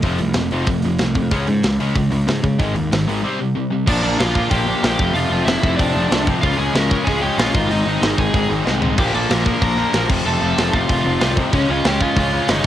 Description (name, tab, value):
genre	punk rock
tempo	188 BPM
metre	4/4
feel	straight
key	unclear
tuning	A4 = 440 Hz
part	distorted electric guitar	riff	0.0-12.6 s	F2 to Eb4	-23 LUFS	right 7 dB	overdrive, cassette tape
part	overdriven semi-hollow guitar	riff	0.0-12.6 s	F2 to Db4	-22 LUFS	left 7 dB	cassette tape
part	fuzz picked electric bass	bass	0.0-12.7 s	F1 to Db3	-22 LUFS	equal	overdrive
part	tight metal drum kit	drums	0.0-12.7 s	crash cymbal, hi-hat, kick drum, snare drum, toms	-21 LUFS	equal	cassette tape
part	smooth overdriven lead guitar	melody	3.9-12.7 s	Db4 to Bb5	-22 LUFS	equal	cassette tape
room	little or no reverb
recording	home recording on cassette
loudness	-15 LUFS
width	side -12 dB against mid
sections	0.0-3.9 A section; 3.9-12.7 B section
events	break 3.2-3.9; drum fill 8.7-9.0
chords	0.0 F; 1.3 Db5; 2.6 Ab5; 3.2 C5; 3.9 Bb; 5.0 F; 6.4 Db; 7.5 Ab; 9.0 Bb; 10.1 F; 11.5 Db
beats	| 0.04 0.36 0.68 1.00 | 1.32 1.64 1.96 2.28 | 2.60 2.92 3.24 3.56 | 3.88 4.20 4.52 4.84 | 5.16 5.48 5.79 6.11 | 6.43 6.75 7.07 7.39 | 7.71 8.03 8.35 8.67 | 8.99 9.30 9.62 9.94 | 10.26 10.58 10.90 11.22 | 11.54 11.85 12.17 12.49